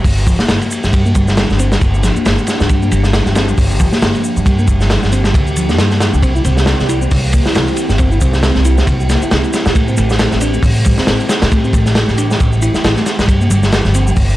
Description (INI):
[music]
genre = breakbeat, breaks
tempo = 136 BPM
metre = 4/4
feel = swing 57% on 16ths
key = G dorian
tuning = A4 = 439 Hz
[part]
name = warbly tape-like pad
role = sustained chords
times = 0.0-14.4 s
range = E3 to G4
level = -22 LUFS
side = right 2 dB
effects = chorus, built-in reverb, phaser, vintage 12-bit sampler grit, sidechain pumping
[part]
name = upright bass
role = bass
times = 0.0-14.4 s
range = G1 to A2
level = -14 LUFS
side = equal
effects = tube saturation
[part]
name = crunchy breakbeat drum kit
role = drums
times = 0.0-14.3 s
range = hi-hat, kick drum, ride cymbal, snare drum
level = -14 LUFS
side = equal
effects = none
[part]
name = shaker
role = drums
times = 0.1-14.4 s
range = none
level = -30 LUFS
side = equal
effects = none
[part]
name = picked electric bass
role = riff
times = 0.3-14.1 s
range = F3 to E4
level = -20 LUFS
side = equal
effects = tube saturation, ping-pong delay
[sound]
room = light reverb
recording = dark, warm production, vinyl crackle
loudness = -11 LUFS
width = side -16 dB against mid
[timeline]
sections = 0.0-14.4 A section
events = none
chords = 0.0 Gm7; 6.2 C7; 9.8 Am7; 13.3 Gm7